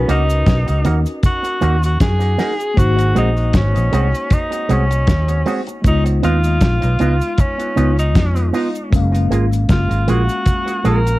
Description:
lovers rock reggae; 78 BPM; 4/4; swing 55% on 16ths; F# major; A4 = 440 Hz
clear tenor saxophone; melody; 0.0-11.2 s; C#4 to A#4; -21 LUFS; equal; cassette tape, tape echo
mellow tine electric piano; accompaniment; 0.0-11.2 s; G#3 to E#5; -25 LUFS; left 4 dB; medium stereo tremolo, cassette tape
vintage muted fingered electric bass; bass; 0.0-11.2 s; F#1 to F#2; -16 LUFS; equal
electric guitar with an envelope filter; stabs; 0.1-11.1 s; G#3 to F#4; -23 LUFS; right 4 dB; cassette tape, tape echo
damped 70s drum kit; drums; 0.1-11.2 s; hi-hat, kick drum, snare drum; -16 LUFS; equal; cassette tape
cabasa; percussion; 0.1-11.2 s; -42 LUFS; right 4 dB; tape echo
light reverb; home recording on cassette, faint mains hum; -14 LUFS; side -18 dB against mid
0.0-11.2 A section
0.0 Bmaj7 (rootless); 2.8 G#7; 5.8 C#9; 8.9 F#maj9
0.46 1.23 2.00 | 2.77 3.54 4.31 5.08 | 5.85 6.62 7.38 8.15 | 8.92 9.69 10.46

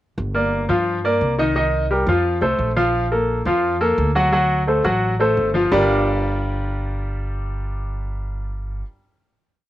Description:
latin, salsa; 173 BPM; 4/4; straight; G minor; A4 = 440 Hz
upright bass; bass; 0.2-8.8 s; G1 to G2; -24 LUFS; equal
clear baby grand piano; accompaniment; 0.3-8.8 s; Eb3 to F#5; -18 LUFS; equal; cassette tape
light reverb, small room ambience; home recording on cassette; -18 LUFS; side -14 dB against mid
0.2-5.7 verse; 5.7-8.5 final chord
0.2 Gm7; 1.6 Cm7; 2.2 F; 2.9 Bbmaj7; 4.3 D7; 5.7 Gm7
| 0.18 0.52 0.87 1.21 | 1.56 1.90 2.25 2.60 | 2.94 3.29 3.64 3.98 | 4.33 4.68 5.03 5.37 | 5.72 6.07 6.42 6.76 | 7.11 7.46 7.81 8.15

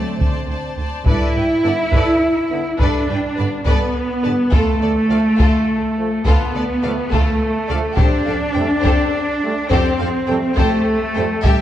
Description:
cinematic, epic orchestral film score; 69 BPM (dotted quarters); 12/8; straight; A4 = 440 Hz
warm symphonic violin section; melody; 0.0-11.6 s; A4 to A5; -29 LUFS; left 4 dB
clear symphonic violin section; second line; 0.0-11.6 s; F4 to D5; -28 LUFS; left 3 dB
rich symphonic viola section; accompaniment; 0.0-11.6 s; A4 to C5; -29 LUFS; right 1 dB
clear trombone section; sustained chords; 0.0-11.3 s; D3 to C4; -30 LUFS; right 4 dB
dark French horn section; sustained chords; 0.0-11.6 s; F#3 to E4; -23 LUFS; left 2 dB
clear studio cello section; bass; 0.0-11.6 s; G3 to E4; -21 LUFS; right 1 dB
clear symphonic double bass section; bass; 0.2-11.5 s; A1 to G2; -25 LUFS; right 3 dB
taiko ensemble; drums; 0.2-11.6 s; -18 LUFS; equal
dark trumpet section; stabs; 1.1-11.6 s; G4 to E5; -26 LUFS; right 1 dB
moderate concert hall reverb, RT60 2.0 s; dark, warm production; -15 LUFS; side -12 dB against mid
0.0-1.1 A section; 1.1-11.6 B section
0.0 D7; 1.1 Gadd9; 4.5 Dm; 8.0 Fadd9
0.20 | 1.06 1.93 2.79 3.66 | 4.52 5.39 6.25 7.12 | 7.98 8.85 9.71 10.58 | 11.44

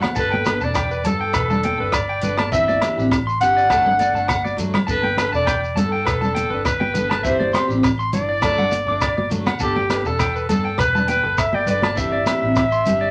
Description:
highlife guitar band; 102 BPM; 4/4; swing 54% on 16ths; G major; A4 = 440 Hz
picked steel-string acoustic guitar; accompaniment; 0.0-13.1 s; E3 to A4; -28 LUFS; equal
electric guitar at the edge of break-up; arpeggios; 0.0-13.1 s; B4 to D6; -28 LUFS; equal
compact cocktail drum kit; drums; 0.0-13.0 s; hi-hat, kick drum, rim click; -30 LUFS; equal
agogo bells; percussion; 0.0-12.7 s; -29 LUFS; equal
congas; percussion; 0.0-13.0 s; -27 LUFS; equal
shekere; percussion; 0.0-13.0 s; -34 LUFS; equal
clear clarinet; melody; 0.2-13.1 s; G4 to F#5; -23 LUFS; equal
vintage muted fingered electric bass; bass; 0.2-13.1 s; E1 to G2; -30 LUFS; equal
wet club reverb, RT60 0.5 s; -19 LUFS; mono
0.0-13.1 A section
drum fill 4.3-4.9
0.2 Gadd9; 2.5 Cadd9/G; 3.7 D/G; 4.9 Gadd9; 7.2 Cadd9/G; 8.4 D/G; 9.6 Gadd9; 12.0 Cadd9/G
| 0.17 0.76 1.34 1.93 | 2.52 3.11 3.70 4.29 | 4.88 5.47 6.06 6.65 | 7.24 7.83 8.42 9.02 | 9.61 10.20 10.79 11.38 | 11.97 12.56

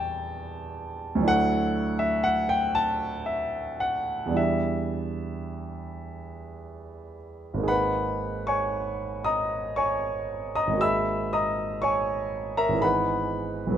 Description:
classical, impressionist solo piano; 53-63 BPM; 3/4; rubato; E minor, G# minor from 7.7 s; A4 = 440 Hz
warm concert grand piano; solo; 0.0-13.8 s; G#1 to E6; -25 LUFS; equal
moderate recital hall reverb, RT60 1.4 s; close, detailed microphones; -24 LUFS; side -9 dB against mid
0.0-7.7 A section; 7.7-13.8 B section
0.0 Em6; 1.3 Dadd9; 4.4 Em7; 7.7 G#madd9; 10.8 F#add9/G#; 12.8 Emaj7/G#
0.34 | 1.29 2.26 3.28 | 4.37 5.49 6.60 | 7.70 8.75 9.79 | 10.82 11.84 12.83

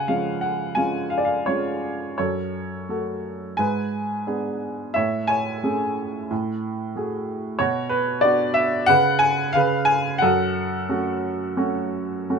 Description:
classical, lyrical solo piano; 90 BPM; 4/4; uneven beats, rubato; F# minor; A4 = 441 Hz
warm upright piano; solo; 0.0-12.4 s; F#2 to G#5; -21 LUFS; equal
light reverb; -21 LUFS; side -5 dB against mid
0.0-12.4 A section
0.0 C#; 2.2 F#m; 3.6 G#dim; 5.0 Amaj7; 6.3 F#madd9/A; 7.6 Bm; 8.9 C#7sus4; 10.2 F#m
0.09 0.77 1.48 | 2.19 2.89 3.59 4.27 | 4.96 5.63 6.31 6.96 | 7.60 8.23 8.89 9.55 | 10.22 10.89 11.57 12.29

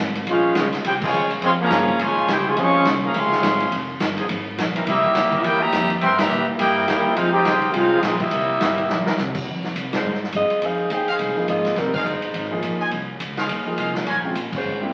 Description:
jazz, big band swing; 209 BPM; 4/4; swing 60% on 8ths; F minor from 9.5 s; A4 = 440 Hz
upright bass; bass; 0.0-14.9 s; F1 to C3; -32 LUFS; equal
swinging big-band drum kit; drums; 0.2-14.6 s; crash cymbal, hi-hat, kick drum, ride cymbal, snare drum; -28 LUFS; equal
brilliant trumpet section; melody; 0.3-9.2 s; Bb3 to Db6; -24 LUFS; equal
bright trombone section; second line; 0.3-9.2 s; C3 to G4; -24 LUFS; equal
brilliant trombone section; sustained chords; 0.6-9.1 s; Db3 to Bb4; -34 LUFS; equal
mellow saxophone section; melody; 9.9-12.5, 14.5-14.8 s; G3 to G5; -25 LUFS; equal
bright trumpet section; stabs; 11.1-14.2 s; Ab4 to Ab5; -29 LUFS; equal
clear concert grand piano; accompaniment; 11.4-14.9 s; F3 to Ab4; -30 LUFS; equal
wet large studio reverb, RT60 1.3 s; very old 78 rpm record, vinyl crackle; -21 LUFS; mono
0.0-9.5 A section; 9.5-14.9 B section
band accent 1.0, 6.2, 9.9, 11.9, 14.5; drum fill 8.9
0.3 Bbm9; 3.7 Fm7; 4.9 C7#9; 7.2 Fm7; 8.3 C7#9; 9.5 Fm7; 14.1 Bbm9
| 0.27 0.56 0.84 1.13 | 1.42 1.71 1.99 2.28 | 2.57 2.86 3.14 3.43 | 3.72 4.01 4.29 4.58 | 4.87 5.16 5.44 5.73 | 6.02 6.30 6.59 6.88 | 7.17 7.45 7.74 8.03 | 8.31 8.60 8.89 9.18 | 9.46 9.75 10.04 10.33 | 10.62 10.90 11.19 11.48 | 11.77 12.05 12.34 12.63 | 12.92 13.20 13.49 13.78 | 14.07 14.35 14.64

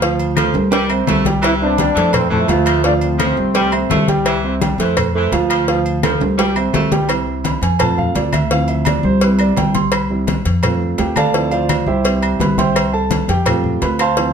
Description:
latin, salsa; 170 BPM; 4/4; straight; C major; A4 = 440 Hz
bright saxophone section; second line; 0.0-6.9 s; E3 to A3; -22 LUFS; left 1 dB
warm grand piano; accompaniment; 0.0-14.3 s; E3 to C6; -19 LUFS; right 4 dB
upright bass; bass; 0.0-14.3 s; C2 to F2; -19 LUFS; left 1 dB
congas; percussion; 0.0-14.3 s; -22 LUFS; left 3 dB
cowbell; percussion; 0.0-14.3 s; -24 LUFS; left 1 dB
agogo bells and timbales; percussion; 0.2-14.2 s; -24 LUFS; right 7 dB
claves; percussion; 0.4-14.2 s; -29 LUFS; left 9 dB
bright trombone section; melody; 1.4-4.0 s; F3 to E4; -18 LUFS; left 1 dB; slapback echo, plate reverb
moderate studio reverb, RT60 0.9 s; -13 LUFS; side -7 dB against mid
0.0-7.1 A section; 7.1-14.3 B section
drum fill 0.5-1.4, 6.0-7.1; grand piano solo 7.1-14.3
0.0 Dm7; 0.7 C; 2.1 F; 2.8 Dm7; 3.6 C; 5.0 F; 5.7 Dm7; 6.4 C; 7.8 F; 8.5 Dm7; 9.2 C; 10.6 F; 11.3 Dm7; 12.1 C; 13.5 F
| 0.02 0.37 0.72 1.08 | 1.43 1.78 2.14 2.49 | 2.85 3.20 3.55 3.91 | 4.26 4.62 4.97 5.32 | 5.68 6.03 6.38 6.74 | 7.09 7.45 7.80 8.15 | 8.51 8.86 9.22 9.57 | 9.93 10.28 10.63 10.99 | 11.34 11.70 12.05 12.40 | 12.76 13.11 13.47 13.82 | 14.17

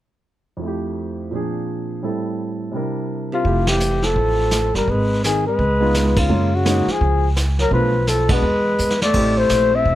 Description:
jazz, small-group swing and bop; 169 BPM; 4/4; swing 62% on 8ths; A4 = 437 Hz
warm grand piano; accompaniment; 0.6-10.0 s; F2 to Bb4; -23 LUFS; right 2 dB
mellow flugelhorn; melody; 3.3-10.0 s; F4 to E5; -20 LUFS; left 2 dB; plate reverb
breathy tenor saxophone; second line; 3.3-10.0 s; C3 to C4; -24 LUFS; right 2 dB
upright bass; bass; 3.4-10.0 s; E1 to Gb2; -20 LUFS; equal
vintage brush drum kit; drums; 3.4-10.0 s; brushed snare drum, crash cymbal, hi-hat, kick drum, ride cymbal, snare drum; -24 LUFS; right 1 dB
light reverb; -16 LUFS; side -13 dB against mid
0.6-3.5 A section; 3.5-10.0 B section
band accent 3.6, 6.1, 8.3; drum fill 8.8-9.1
0.6 Fmaj7; 1.3 Bb9; 2.0 Am7; 2.7 C7; 3.5 Fmaj7; 4.9 Abm; 5.6 Db7; 6.3 Gbmaj7; 7.7 Bm7b5; 8.4 E; 9.1 Am7
| 0.61 0.97 1.33 1.68 | 2.04 2.39 2.75 3.10 | 3.46 3.81 4.17 4.52 | 4.88 5.23 5.59 5.94 | 6.30 6.66 7.01 7.37 | 7.72 8.08 8.43 8.79 | 9.14 9.50 9.85

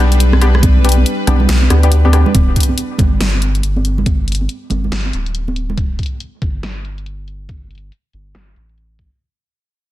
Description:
deep dubstep; 140 BPM; 4/4; swing 61% on 16ths, half-time; A4 = 444 Hz
bowed-like drone; sustained chords; 0.0-2.3 s; G3 to B4; -23 LUFS; left 2 dB; built-in reverb
filtered dub chord stab; stabs; 0.0-2.3 s; B3 to G4; -21 LUFS; left 3 dB; chorus, dub echo
soft dub sub bass; bass; 0.0-9.1 s; D1 to D2; -14 LUFS; equal
dubstep drum kit; drums; 0.1-9.1 s; hi-hat, rim click, snare drum; -21 LUFS; left 1 dB; low-pass filter on hats, low-pass filter on snare, low-pass filter on room
congas; percussion; 0.3-5.8 s; -21 LUFS; right 3 dB; dub echo
electronic kick drum; drums; 0.6-9.1 s; -14 LUFS; equal
digital ambience; dense, heavily limited modern master; -12 LUFS; side -14 dB against mid
0.0-2.3 A section; 2.3-9.2 B section
drop 0.0-2.3; kick drops out 1.9-2.3; fade-out 2.3-9.2
0.0 G; 2.3 D5
0.20 | 0.63 1.06 1.49 1.92 | 2.35 2.77 3.20 3.63 | 4.06 4.49 4.92 5.35 | 5.78 6.20 6.63 7.06 | 7.49 7.92 8.35 8.78

